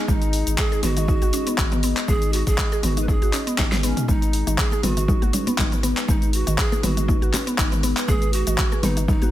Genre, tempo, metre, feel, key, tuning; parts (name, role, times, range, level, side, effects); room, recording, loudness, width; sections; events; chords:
afro house; 120 BPM; 4/4; swing 55% on 16ths; G# minor pentatonic; A4 = 440 Hz
breathy bright large pan pipes; melody; 0.0-9.3 s; C#4 to B4; -29 LUFS; right 2 dB; ping-pong delay
dark analog pad; sustained chords; 0.0-9.3 s; G#3 to D#5; -31 LUFS; equal; chorus, phaser, sidechain pumping
mallet-like synth pluck; arpeggios; 0.1-9.3 s; D#3 to G#4; -28 LUFS; left 1 dB; chorus, sidechain pumping, ping-pong delay
round analog bass; bass; 0.1-9.3 s; G#1; -25 LUFS; equal; sidechain pumping
deep house drum kit; drums; 0.1-9.3 s; handclaps, hi-hat, shaker, snare drum, toms; -26 LUFS; left 1 dB; small room ambience
electronic kick drum; drums; 0.1-9.2 s; -22 LUFS; equal; small room ambience
congas; percussion; 4.1-9.3 s; -28 LUFS; left 1 dB
digital ambience; -18 LUFS; side -13 dB against mid
0.0-9.3 A section
drum fill 3.6-4.1
0.0 G#m7